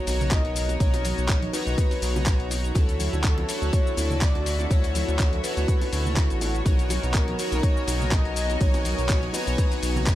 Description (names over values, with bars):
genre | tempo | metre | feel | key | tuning
deep house | 123 BPM | 4/4 | swing 55% on 16ths | B major | A4 = 440 Hz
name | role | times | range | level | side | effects
breathy flute-like synth lead | melody | 0.0-10.2 s | A4 to D#5 | -33 LUFS | left 1 dB | chorus, cassette tape, tape echo
warm analog pad | sustained chords | 0.0-10.2 s | B3 to A#5 | -36 LUFS | right 1 dB | chorus, sidechain pumping
chorused polysynth | stabs | 0.0-10.2 s | D#4 to A#5 | -31 LUFS | equal | sidechain pumping, tape echo
sub drop | sound effects | 0.0-0.8 s | none | barely audible | none | none
dark studio string section | texture | 0.0-10.2 s | B3 to E5 | -38 LUFS | left 3 dB | sidechain pumping
round analog bass | bass | 0.1-10.2 s | A1 to D2 | -27 LUFS | equal | sidechain pumping
dusty soul sampler-style drum kit | drums | 0.1-10.2 s | handclaps, hi-hat, shaker | -31 LUFS | left 2 dB | studio reverb
bongos and congas | percussion | 0.1-10.1 s | none | -35 LUFS | right 1 dB | none
electronic kick drum | drums | 0.3-10.2 s | none | -22 LUFS | equal | studio reverb
string machine, violins | texture | 6.7-10.2 s | G#5 | -39 LUFS | equal | ensemble chorus, sidechain pumping
room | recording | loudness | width
little or no reverb | none | -21 LUFS | side -14 dB against mid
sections
0.0-10.2 A section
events
impact 0.0-0.8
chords
0.0 Bmaj9; 2.8 Dmaj9; 6.7 Bmaj9